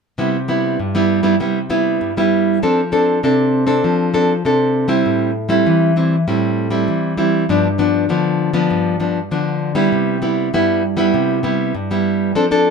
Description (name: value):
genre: samba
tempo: 99 BPM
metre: 4/4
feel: straight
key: C major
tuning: A4 = 440 Hz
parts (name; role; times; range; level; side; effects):
- nylon-string guitar; solo; 0.2-12.7 s; G2 to A4; -14 LUFS; equal; none
room: moderate studio reverb, RT60 0.5 s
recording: none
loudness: -14 LUFS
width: side -5 dB against mid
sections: 0.2-9.9 A section; 9.9-12.7 B section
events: none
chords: 0.2 Cmaj7; 2.6 F6; 5.1 Am7; 7.5 G7; 9.9 Cmaj7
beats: | 0.19 0.80 1.41 2.02 | 2.62 3.23 3.84 4.45 | 5.06 5.67 6.28 6.89 | 7.49 8.10 8.71 9.32 | 9.93 10.53 11.14 11.75 | 12.36